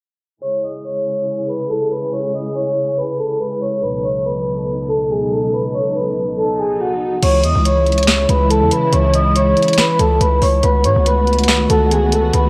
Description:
hip hop, trap; 141 BPM; 4/4; half-time; C# minor; A4 = 437 Hz
vibraphone with soft mallets; melody; 0.4-12.5 s; F#4 to D#6; -19 LUFS; equal
dark symphonic string section; sustained chords; 0.4-12.5 s; C#2 to A4; -24 LUFS; equal
distorted 808-style bass; bass; 7.2-12.5 s; C#2 to G#2; -18 LUFS; equal; distortion
trap drum kit; drums; 7.2-12.4 s; crash cymbal, finger snaps, hi-hat, snare drum; -21 LUFS; equal
light reverb; worn, warbling old tape, cassette tape, warbly pitch drift, low-pass filter; -17 LUFS; mono
0.4-7.2 A section; 7.2-12.5 B section
filter sweep 0.4-7.2
0.4 C#m; 3.8 B7/C#; 7.2 C#m; 10.6 B7/C#

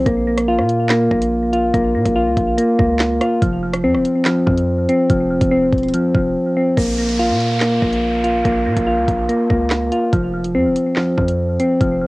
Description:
hip hop, drill; 143 BPM; 4/4; half-time; A4 = 440 Hz
soft electric-piano-like synth keys; arpeggios; 0.0-12.1 s; F3 to F4; -16 LUFS; equal; chorus, tremolo, cassette tape, analog delay
hard-hitting 808-style bass; bass; 0.0-12.1 s; E1 to Bb2; -23 LUFS; equal
drill drum kit; drums; 0.1-11.9 s; handclaps, hi-hat, kick drum, rim click, snare drum; -21 LUFS; equal; overdrive, vintage 12-bit sampler grit, cassette tape
downlifter; sound effects; 6.8-10.1 s; -28 LUFS; right 1 dB
light reverb; home recording on cassette; -14 LUFS; side -21 dB against mid
0.0-6.8 A section; 6.8-12.1 B section
drums muted 6.4-6.8
0.1 Bbm; 3.4 F5; 6.8 Bbm; 10.1 F5

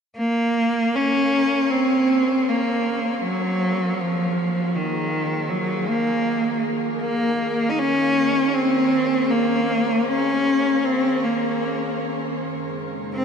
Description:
ambient; free time; Gb lydian; A4 = 441 Hz
warbly tape-like pad; sustained chords; 1.6-13.2 s; Gb2 to Bb4; -30 LUFS; equal; chorus, built-in reverb
rich cello; melody; 0.2-13.2 s; Eb3 to Eb4; -19 LUFS; equal; ping-pong delay
wet shimmer reverb, RT60 8.7 s; nothing above 10.9 kHz; -19 LUFS; side -6 dB against mid
0.1-13.2 A section
fade-in on ambient pad 0.1-13.2
0.1 Gb6 (rootless); 12.4 Db69/Gb

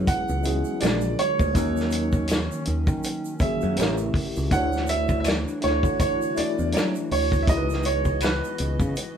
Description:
R&B, neo-soul; 81 BPM; 4/4; swing 58% on 16ths; A4 = 441 Hz
tine electric piano; accompaniment; 0.0-9.2 s; D#3 to D5; -30 LUFS; left 2 dB; overdrive, fast stereo tremolo
hollow soft pad; sustained chords; 0.0-9.2 s; C#3 to D#5; -34 LUFS; left 1 dB; chorus
fingered electric bass; bass; 0.0-8.9 s; A1 to D#3; -27 LUFS; equal
clear grand piano; melody; 0.1-9.2 s; B4 to F#5; -27 LUFS; right 4 dB
warm soul drum kit; drums; 0.1-9.2 s; hi-hat, kick drum, snare drum; -25 LUFS; equal
tube shaker and finger snaps; percussion; 0.1-9.2 s; -40 LUFS; left 2 dB
nylon-string guitar; second line; 0.8-6.9 s; F#3 to G4; -29 LUFS; right 2 dB
moderate studio reverb, RT60 0.6 s; band playing live in one room; -21 LUFS; side -8 dB against mid
0.0-9.2 A section
0.0 F#7sus4; 0.8 A#7b13; 1.5 D#m7; 3.8 A7b9; 4.5 Dmaj9; 7.5 C#m11

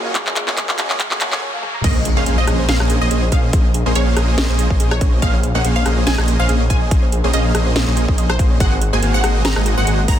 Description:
future bass; 142 BPM; 4/4; swing 55% on 16ths, half-time; Bb minor; A4 = 441 Hz
bright baby grand piano; accompaniment; 0.0-1.4 s; Gb3 to Ab4; -32 LUFS; right 1 dB; sidechain pumping, ping-pong delay
ethereal airy pad; sustained chords; 0.0-1.4 s; Gb3 to F4; -40 LUFS; left 1 dB
dense compressed supersaw; riff; 0.0-10.2 s; Bb3 to Ab5; -22 LUFS; right 1 dB; vintage 12-bit sampler grit, sidechain pumping
wide detuned saw bass; bass; 0.0-10.2 s; Gb1 to Bb1; -18 LUFS; equal; chorus, tube saturation, sidechain pumping, high-pass filter
riser and impact; sound effects; 0.0-3.5 s; -27 LUFS; equal
thumb-piano-like synth pluck; arpeggios; 0.1-10.2 s; Ab4 to Bb5; -30 LUFS; right 2 dB; chorus, sidechain pumping, ping-pong delay
electronic kick drum; drums; 0.2-10.2 s; -16 LUFS; equal
trap drum kit; drums; 0.2-10.2 s; crash cymbal, handclaps, hi-hat, rim click, snare drum, toms; -22 LUFS; equal; overdrive
wide unison pluck; melody; 1.8-10.2 s; C5 to Bb5; -24 LUFS; equal; phaser, sidechain pumping, ping-pong delay
little or no reverb; dense, heavily limited modern master, high-pass filter; -14 LUFS; side -10 dB against mid
0.0-1.8 A section; 1.8-10.2 B section
build-up 0.0-1.8; drum fill 0.0-1.4, 1.6; riser 0.0-1.8; filter sweep on synth arpeggio sound 0.0-1.8; break 1.4-1.8; drop 1.8-10.2; impact 1.8-3.5
0.0 Gbmaj9; 1.8 Bbm11; 8.6 Ab9

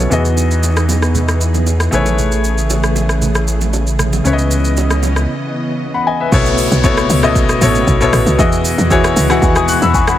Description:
amapiano; 116 BPM; 4/4; straight; A4 = 440 Hz
clear baby grand piano; accompaniment; 0.0-10.2 s; B2 to F#6; -16 LUFS; left 3 dB; low-pass filter
string machine, violas; sustained chords; 0.0-10.2 s; B2 to D#5; -21 LUFS; right 1 dB; ensemble chorus, sidechain pumping, low-pass filter
saturated sub bass; bass; 0.0-5.3 s; A1 to E2; -15 LUFS; equal
afro-pop drum kit; drums; 0.1-10.2 s; hi-hat, kick drum, rim click, shaker; -18 LUFS; equal
congas and bongos; percussion; 0.1-5.2 s; -24 LUFS; right 6 dB
swell and downlifter; sound effects; 4.0-10.2 s; -27 LUFS; right 2 dB
woody log drum bass; bass; 6.3-10.2 s; A1 to E2; -16 LUFS; equal
light reverb; -11 LUFS; side -12 dB against mid
0.0-6.3 A section; 6.3-10.2 B section
break 5.3-6.3; drop 6.3-10.2
0.1 Emaj7; 1.9 Amaj7; 4.3 C#m9; 6.3 B9sus4; 8.4 Emaj7

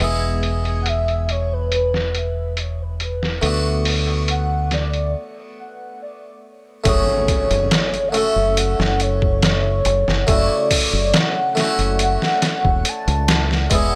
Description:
trip hop; 70 BPM; 4/4; straight; F# minor; A4 = 440 Hz
harpsichord; accompaniment; 0.0-14.0 s; C#3 to A4; -26 LUFS; equal; harmonic tremolo, tape echo
deep dub fingered electric bass; bass; 0.0-13.9 s; E1 to D2; -23 LUFS; equal
trip hop sampler-style drum kit; drums; 0.0-13.9 s; hi-hat, kick drum, snare drum; -23 LUFS; equal; overdrive, low-pass filter on hats, low-pass filter on snare, low-pass filter on kick
pure breathy sine lead; melody; 0.8-14.0 s; B4 to A5; -25 LUFS; equal; phaser, analog chorus, vintage 12-bit sampler grit, tape echo
impact; sound effects; 6.9-10.3 s; -32 LUFS; equal
light reverb; -19 LUFS; mono
0.0-6.9 A section; 6.9-14.0 B section
break 5.1-6.9; impact 6.9-10.3
0.0 E; 3.4 Bm7/D; 6.9 F#madd9; 10.3 Dmaj7/F#

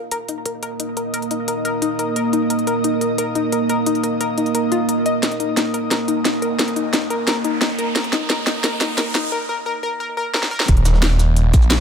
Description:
dark technical drum and bass; 176 BPM; 4/4; straight; A4 = 440 Hz
deep dark ambient pad; sustained chords; 0.0-11.8 s; Bb3 to Eb5; -24 LUFS; right 2 dB; chorus, built-in reverb, sidechain pumping
airy breathy pad; texture; 0.1-9.3 s; Bb3 to Eb6; -26 LUFS; right 2 dB; chorus, sidechain pumping
analog pluck; arpeggios; 0.1-10.6 s; Eb4 to Eb5; -24 LUFS; left 5 dB; chorus, sidechain pumping, dub echo
drum and bass drum kit; drums; 0.1-11.8 s; hi-hat, shaker, snare drum; -21 LUFS; equal; small room ambience
riser; sound effects; 5.9-9.3 s; -30 LUFS; right 2 dB
phased detuned saw bass; bass; 10.7-11.8 s; Eb1 to Bb1; -14 LUFS; equal; phaser, overdrive, sidechain pumping
electronic kick drum; drums; 10.7-11.6 s; -13 LUFS; equal; small room ambience
jungle sampler-style drum kit; drums; 10.7-11.8 s; hi-hat, snare drum; -32 LUFS; equal
light reverb; high-pass filter; -17 LUFS; side -7 dB against mid
0.0-10.7 A section; 10.7-11.8 B section
build-up 0.0-10.7; filter sweep on synth arpeggio sound 0.0-10.7; filter sweep 0.0-10.7; drum fill 5.2-9.3, 10.3-10.7; riser 5.9-9.3; break 9.3-10.7; drop 10.7-11.8
0.0 Eb5

